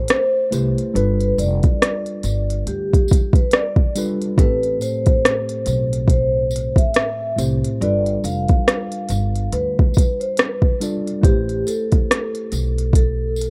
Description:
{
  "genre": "lo-fi hip hop",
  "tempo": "70 BPM",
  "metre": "4/4",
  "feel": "swing 57% on 16ths",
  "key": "A minor",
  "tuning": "A4 = 443 Hz",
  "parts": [
    { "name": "vibraphone with medium mallets", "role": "melody", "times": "0.0-13.5 s", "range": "G4 to F5", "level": "-25 LUFS", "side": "equal", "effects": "low-pass filter" },
    { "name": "mellow tine electric piano", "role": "accompaniment", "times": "0.0-13.5 s", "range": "A2 to D5", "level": "-28 LUFS", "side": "equal", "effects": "cassette tape, low-pass filter" },
    { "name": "upright bass", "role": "bass", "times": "0.0-13.5 s", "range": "F1 to D2", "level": "-24 LUFS", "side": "equal", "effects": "none" },
    { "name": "organic electronic drum kit", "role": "drums", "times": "0.1-13.5 s", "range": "hi-hat, kick drum, rim click", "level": "-18 LUFS", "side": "equal", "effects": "overdrive" },
    { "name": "tambourine", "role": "percussion", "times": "0.5-13.5 s", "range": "none", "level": "-38 LUFS", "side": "equal", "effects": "none" }
  ],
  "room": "small room ambience",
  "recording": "rough home demo mix",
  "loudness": "-19 LUFS",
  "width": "mono",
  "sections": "0.0-13.5 A section",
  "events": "none",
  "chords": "0.0 Am7; 0.9 G7; 4.4 Am7; 7.8 G7; 11.2 Am7",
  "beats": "0.09 | 0.95 1.81 2.66 3.52 | 4.38 5.24 6.09 6.95 | 7.81 8.66 9.52 10.38 | 11.23 12.09 12.95"
}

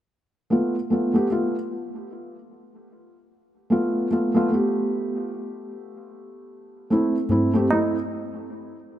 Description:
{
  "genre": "trip hop",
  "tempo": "75 BPM",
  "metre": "4/4",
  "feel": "swing 59% on 16ths",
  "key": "unclear",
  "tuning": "A4 = 437 Hz",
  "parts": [
    { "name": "felt-muted upright piano", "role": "accompaniment", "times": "0.5-8.0 s", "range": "A3 to G4", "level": "-22 LUFS", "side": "equal", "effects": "harmonic tremolo, tape echo" },
    { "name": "tabla", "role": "percussion", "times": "7.3-7.9 s", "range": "none", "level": "-26 LUFS", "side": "right 1 dB", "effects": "none" }
  ],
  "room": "moderate lush hall reverb, RT60 2.7 s",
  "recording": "none",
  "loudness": "-20 LUFS",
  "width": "side -12 dB against mid",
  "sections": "0.5-9.0 A section",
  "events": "none",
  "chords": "0.5 G7/A; 6.9 Am",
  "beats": "| 0.51 1.30 2.10 2.90 | 3.71 4.50 5.30 6.11 | 6.91 7.71"
}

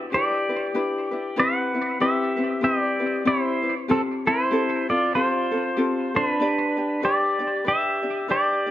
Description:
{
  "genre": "Hawaiian",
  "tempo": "95 BPM",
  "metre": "4/4",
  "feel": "swing 59% on 8ths",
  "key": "G major",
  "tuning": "A4 = 442 Hz",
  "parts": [
    { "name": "ukulele", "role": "accompaniment", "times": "0.0-8.7 s", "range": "C4 to D5", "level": "-26 LUFS", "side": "left 2 dB", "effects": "none" },
    { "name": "pedal steel guitar", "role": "melody", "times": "0.1-8.7 s", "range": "C4 to F#5", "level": "-22 LUFS", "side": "equal", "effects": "plate reverb, tape echo" }
  ],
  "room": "moderate small room reverb, RT60 0.5 s",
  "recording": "none",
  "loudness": "-21 LUFS",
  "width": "side -13 dB against mid",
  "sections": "0.0-8.7 A section",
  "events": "none",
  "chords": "0.0 G6; 1.4 Cmaj7; 3.9 Fadd9; 6.4 G",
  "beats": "0.12 0.74 | 1.38 2.00 2.63 3.26 | 3.89 4.52 5.15 5.78 | 6.41 7.04 7.67 8.30"
}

